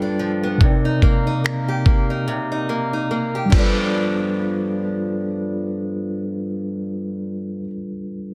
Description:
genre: contemporary R&B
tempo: 72 BPM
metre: 4/4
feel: swing 58% on 16ths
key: unclear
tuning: A4 = 437 Hz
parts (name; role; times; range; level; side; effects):
- mellow tine electric piano; accompaniment; 0.0-8.3 s; C3 to G5; -25 LUFS; equal; none
- picked old ladder-braced acoustic guitar; arpeggios; 0.0-7.7 s; G2 to G4; -28 LUFS; equal; digital delay
- dusty soul sampler-style drum kit; drums; 0.6-3.7 s; crash cymbal, finger snaps, kick drum; -19 LUFS; equal; soft clipping on snare
room: little or no reverb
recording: dense, heavily limited modern master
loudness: -21 LUFS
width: mono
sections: 0.0-3.9 A section; 3.9-7.3 B section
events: break 2.3-3.9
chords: 0.0 G7; 0.6 Cm7; 3.5 G7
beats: | 0.61 1.44 2.27 3.11 | 3.94 4.77 5.61 6.44

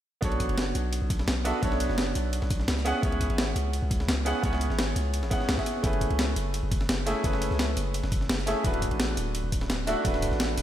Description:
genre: liquid drum and bass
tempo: 171 BPM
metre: 4/4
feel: straight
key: unclear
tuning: A4 = 440 Hz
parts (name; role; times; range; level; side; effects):
- bright grand piano; accompaniment; 0.2-10.6 s; A3 to F#5; -30 LUFS; right 1 dB; tape echo
- long sustained 808-style bass; bass; 0.2-10.6 s; D1 to C#2; -29 LUFS; equal; none
- breakbeat sampler-style drum kit; drums; 0.2-10.6 s; hi-hat, snare drum; -31 LUFS; equal; overdrive
- breakbeat sampler-style drum kit; drums; 0.2-10.6 s; ride cymbal, snare drum; -38 LUFS; equal; high-pass filter on cymbals, high-pass filter on snare
- electronic kick drum; drums; 0.2-10.3 s; none; -30 LUFS; equal; overdrive
room: moderate lush hall reverb, RT60 1.8 s, digital ambience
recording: dreamy mix soaked in reverb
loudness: -25 LUFS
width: side -11 dB against mid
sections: 0.2-10.6 A section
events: none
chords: 0.2 Bm9; 2.9 C#m7; 5.8 F#m11; 8.6 D6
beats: | 0.23 0.58 0.93 1.28 | 1.63 1.98 2.33 2.68 | 3.03 3.38 3.73 4.08 | 4.43 4.79 5.14 5.49 | 5.84 6.19 6.54 6.89 | 7.24 7.59 7.94 8.29 | 8.65 9.00 9.35 9.70 | 10.05 10.40

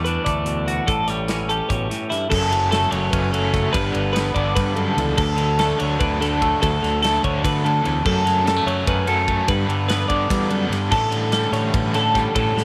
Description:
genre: math rock and midwest emo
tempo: 293 BPM (eighths)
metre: 7/8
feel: straight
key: D major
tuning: A4 = 440 Hz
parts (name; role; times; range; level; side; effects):
- twangy electric guitar; accompaniment; 0.0-12.6 s; D2 to G4; -28 LUFS; equal; none
- twelve-string electric guitar; arpeggios; 0.0-12.6 s; E4 to D5; -24 LUFS; equal; spring reverb, tape echo
- growling fingered electric bass; bass; 0.0-12.6 s; F#1 to G3; -27 LUFS; equal; overdrive
- modern studio drum kit; drums; 0.1-12.6 s; crash cymbal, hi-hat, kick drum, ride cymbal, snare drum; -29 LUFS; equal; none
- overdriven semi-hollow guitar; riff; 2.3-12.6 s; F#2 to E4; -29 LUFS; equal; tremolo
room: light reverb, small room ambience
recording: none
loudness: -20 LUFS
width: mono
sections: 0.0-2.3 A section; 2.3-12.6 B section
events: none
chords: 0.0 Em11; 0.9 A9; 2.3 F#m; 3.7 G6; 5.2 D; 8.0 F#m; 9.5 G6; 10.9 A7sus4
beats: 0.07 0.27 0.48 0.68 | 0.89 1.09 1.30 1.50 1.71 1.91 2.11 | 2.32 2.52 2.73 2.93 3.14 3.34 3.54 | 3.75 3.95 4.16 4.36 4.57 4.77 4.97 | 5.18 5.38 5.59 5.79 6.00 6.20 6.41 | 6.61 6.82 7.02 7.22 7.43 7.63 7.84 | 8.04 8.25 8.45 8.66 8.86 9.07 9.27 | 9.48 9.68 9.89 10.09 10.30 10.50 10.71 | 10.91 11.12 11.32 11.53 11.73 11.94 12.14 | 12.35 12.56

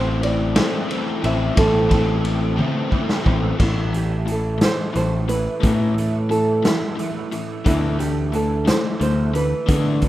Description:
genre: indie rock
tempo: 59 BPM (dotted quarters)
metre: 6/8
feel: straight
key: A minor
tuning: A4 = 440 Hz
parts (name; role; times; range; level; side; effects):
- nylon-string guitar; melody; 0.0-10.1 s; E4 to E5; -24 LUFS; right 2 dB; none
- fuzz guitar; riff; 0.0-10.1 s; E3 to C4; -29 LUFS; right 7 dB; distortion, ensemble chorus, tape echo
- overdriven electric guitar; riff; 0.0-10.1 s; A2 to E4; -26 LUFS; left 7 dB; none
- growling picked electric bass; bass; 0.0-10.1 s; A1 to D3; -21 LUFS; equal; overdrive
- raw garage drum kit; drums; 0.2-10.1 s; crash cymbal, hi-hat, kick drum, ride cymbal, snare drum, toms; -22 LUFS; equal; none
room: light reverb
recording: rough home demo mix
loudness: -17 LUFS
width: side -14 dB against mid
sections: 0.0-3.6 A section; 3.6-10.1 B section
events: drum fill 2.6-3.6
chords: 0.0 Am; 3.6 A5; 7.6 Dsus2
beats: 0.56 | 1.57 2.58 | 3.59 4.60 | 5.62 6.63 | 7.65 8.67 | 9.68

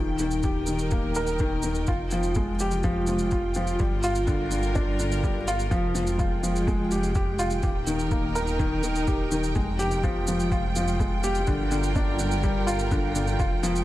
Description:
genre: piano and strings electronica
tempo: 125 BPM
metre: 4/4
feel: straight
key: F dorian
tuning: A4 = 440 Hz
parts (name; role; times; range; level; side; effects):
- warm studio string section; sustained chords; 0.0-13.8 s; Eb3 to G5; -31 LUFS; right 1 dB; sidechain pumping
- felt-muted upright piano; riff; 0.0-13.8 s; D3 to Bb4; -27 LUFS; left 1 dB; tape echo
- dark detuned saw bass; bass; 0.0-13.8 s; Eb1 to G1; -29 LUFS; equal; tube saturation, sidechain pumping
- shaker; drums; 0.2-13.8 s; none; -37 LUFS; right 2 dB; studio reverb
- electronic kick drum; drums; 0.4-13.5 s; none; -27 LUFS; equal; studio reverb
room: light reverb, small room ambience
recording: none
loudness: -23 LUFS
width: side -15 dB against mid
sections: 0.0-13.8 A section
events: none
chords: 0.0 Eb; 1.9 Fmadd9; 3.8 Gm7; 5.7 Fmadd9; 7.6 Eb; 9.6 Fmadd9; 11.5 Gm7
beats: 0.44 0.92 1.40 | 1.88 2.36 2.84 3.32 | 3.80 4.28 4.76 5.24 | 5.72 6.20 6.68 7.16 | 7.64 8.12 8.60 9.08 | 9.56 10.04 10.52 11.00 | 11.48 11.96 12.44 12.92 | 13.40

